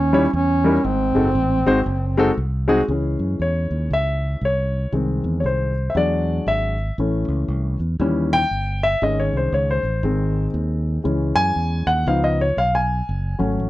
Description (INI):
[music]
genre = uptempo gospel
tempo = 118 BPM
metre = 4/4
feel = swing 61% on 8ths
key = C# harmonic minor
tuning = A4 = 440 Hz
[part]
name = warm duduk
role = melody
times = 0.0-2.4 s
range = B#3 to C#4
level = -20 LUFS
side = right 2 dB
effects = none
[part]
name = fingered electric bass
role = bass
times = 0.0-13.7 s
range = F#1 to F#2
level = -22 LUFS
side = equal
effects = none
[part]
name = warm concert grand piano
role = accompaniment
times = 0.1-13.7 s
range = G#2 to G#5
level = -20 LUFS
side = left 1 dB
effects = none
[sound]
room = light reverb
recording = dry, close 1970s-style studio recording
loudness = -18 LUFS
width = side -16 dB against mid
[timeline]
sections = 0.0-2.9 A section; 2.9-13.7 B section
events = grand piano solo 2.9-13.7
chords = 0.0 D#7b9; 0.8 G#7b9; 2.9 C#m; 4.9 G#/B#; 6.0 E9; 7.0 A; 8.0 D#7b9; 9.0 G#sus4; 10.0 G#; 11.1 C#m; 12.1 C#7; 13.1 F#m